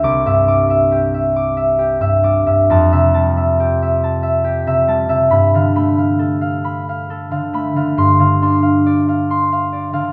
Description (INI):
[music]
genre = classical, solo harp piece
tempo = 45 BPM (dotted quarters)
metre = 6/8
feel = rubato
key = unclear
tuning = A4 = 440 Hz
[part]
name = concert harp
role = solo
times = 0.0-10.1 s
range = C2 to D6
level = -15 LUFS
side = equal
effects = none
[sound]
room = wet recital hall reverb, RT60 1.7 s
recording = none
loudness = -15 LUFS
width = mono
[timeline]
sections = 0.0-10.1 A section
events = none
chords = 0.0 Cadd9; 2.7 Fmaj9; 5.3 G9; 8.0 Dm7/G